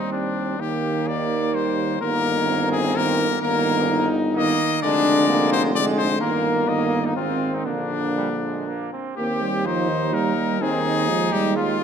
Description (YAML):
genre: classical, brass quintet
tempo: 126 BPM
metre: 3/4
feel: rubato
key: Eb major from 3.4 s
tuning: A4 = 443 Hz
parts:
  - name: clear trumpet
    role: melody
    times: 0.0-11.8 s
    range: D4 to Eb5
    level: -25 LUFS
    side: left 7 dB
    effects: none
  - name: clear flugelhorn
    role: second line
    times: 0.0-11.8 s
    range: G3 to G4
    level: -28 LUFS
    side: right 6 dB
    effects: none
  - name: clear French horn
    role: accompaniment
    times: 0.0-11.8 s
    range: G3 to Eb4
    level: -27 LUFS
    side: left 3 dB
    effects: none
  - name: dark euphonium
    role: accompaniment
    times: 0.0-11.8 s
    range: D3 to Bb3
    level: -26 LUFS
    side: right 3 dB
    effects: none
  - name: clear tuba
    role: bass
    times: 0.0-11.8 s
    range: F1 to Eb2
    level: -27 LUFS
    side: right 3 dB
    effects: none
room: moderate scoring stage reverb, RT60 1.9 s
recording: none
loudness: -19 LUFS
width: side -7 dB against mid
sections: 0.0-9.2 A section; 9.2-11.8 B section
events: none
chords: 0.0 Cm/Eb; 0.6 Eb; 2.0 Eb/G; 4.8 Ddim/F; 6.2 Eb/G; 7.2 Fm7/Ab; 7.7 Bb; 9.2 Eb; 10.6 Fm7/Eb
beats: 0.12 | 0.60 1.07 1.54 | 2.01 2.49 2.96 | 3.42 3.89 4.36 | 4.83 5.29 5.75 | 6.21 6.68 7.17 | 7.67 8.18 8.68 | 9.18 9.66 10.13 | 10.61 11.08 11.56